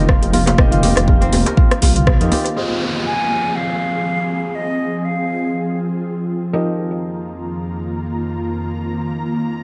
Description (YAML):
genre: afro house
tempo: 121 BPM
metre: 4/4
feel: swing 56% on 16ths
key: F minor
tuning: A4 = 440 Hz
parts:
  - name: ethereal airy pad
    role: sustained chords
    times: 0.0-9.6 s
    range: F2 to Bb5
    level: -25 LUFS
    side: equal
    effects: ensemble chorus, built-in reverb, sidechain pumping
  - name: kora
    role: arpeggios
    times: 0.0-3.7 s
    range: C4 to Bb4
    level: -26 LUFS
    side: equal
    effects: sidechain pumping, analog delay
  - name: felt-muted upright piano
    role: stabs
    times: 0.0-9.6 s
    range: F3 to Eb5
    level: -28 LUFS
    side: equal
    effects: sidechain pumping, low-pass filter, analog delay
  - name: dark detuned saw bass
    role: bass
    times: 0.0-2.3 s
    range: F1 to F2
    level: -20 LUFS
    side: equal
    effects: sidechain pumping
  - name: afro-pop drum kit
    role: drums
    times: 0.1-2.5 s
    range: hi-hat, rim click, toms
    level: -23 LUFS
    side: equal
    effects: low-pass filter on snare, small room ambience, low-pass filter on hats, low-pass filter on toms, analog delay
  - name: electronic kick drum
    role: drums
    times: 0.1-2.2 s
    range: none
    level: -16 LUFS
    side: equal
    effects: small room ambience
  - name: djembe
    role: percussion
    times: 0.1-2.4 s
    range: none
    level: -26 LUFS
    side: equal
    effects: analog delay
  - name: downlifter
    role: sound effects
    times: 2.6-6.5 s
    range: none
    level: -29 LUFS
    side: equal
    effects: none
  - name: mellow silver concert flute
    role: melody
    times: 3.1-5.8 s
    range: Eb5 to Ab5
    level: -24 LUFS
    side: equal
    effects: vintage 12-bit sampler grit, analog delay
room: light reverb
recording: echo-heavy mix, nothing above 10.6 kHz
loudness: -18 LUFS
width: mono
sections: 0.0-2.6 A section; 2.6-9.6 B section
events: band accent 2.1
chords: 0.0 Eb/F; 2.6 Fm7; 6.5 Eb/F